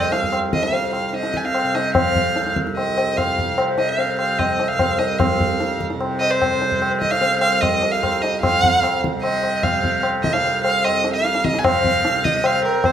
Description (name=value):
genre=indian classical, Hindustani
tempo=148 BPM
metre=4/4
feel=straight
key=unclear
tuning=A4 = 440 Hz
part: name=rich violin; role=melody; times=0.0-12.9 s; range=Bb4 to Ab5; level=-20 LUFS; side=right 1 dB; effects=none
part: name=tanpura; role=drone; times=0.0-12.9 s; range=C2 to C3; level=-25 LUFS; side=right 2 dB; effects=none
part: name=tabla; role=percussion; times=0.1-12.9 s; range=none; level=-21 LUFS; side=left 2 dB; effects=none
room=moderate large studio reverb, RT60 1.3 s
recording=band playing live in one room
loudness=-17 LUFS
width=side -9 dB against mid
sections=0.0-8.4 A section; 8.4-12.9 B section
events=none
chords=none